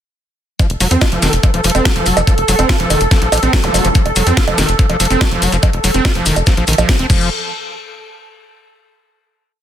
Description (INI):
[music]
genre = psychedelic trance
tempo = 143 BPM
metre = 4/4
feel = straight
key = F major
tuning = A4 = 439 Hz
[part]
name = pulsing gated texture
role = sustained chords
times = 0.6-7.1 s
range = A4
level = -20 LUFS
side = right 1 dB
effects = chorus, built-in reverb, sidechain pumping
[part]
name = screaming distorted acid line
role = riff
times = 0.6-7.3 s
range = Eb3 to F4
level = -19 LUFS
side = right 1 dB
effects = distortion, chorus, auto-pan, sidechain pumping, dub echo
[part]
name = drum and bass drum kit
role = drums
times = 0.6-7.2 s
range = bongos, crash cymbal, hi-hat, snare drum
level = -18 LUFS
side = right 1 dB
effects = small room ambience
[part]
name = electronic kick drum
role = drums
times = 0.6-7.2 s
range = none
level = -13 LUFS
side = equal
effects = small room ambience
[part]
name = maracas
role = percussion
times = 0.6-7.3 s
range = none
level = -23 LUFS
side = left 5 dB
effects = none
[part]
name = tight sequencer bass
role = bass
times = 0.7-7.3 s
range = F1 to F2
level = -17 LUFS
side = equal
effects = none
[part]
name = zap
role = sound effects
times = 3.6-3.7 s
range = none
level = -23 LUFS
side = left 1 dB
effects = none
[sound]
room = little or no reverb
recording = dense, heavily limited modern master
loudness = -11 LUFS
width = side -10 dB against mid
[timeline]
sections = 0.6-7.3 groove; 7.3-9.0 final hit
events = filter sweep on acid bass 0.6-7.3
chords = 0.6 F5; 7.1 N.C.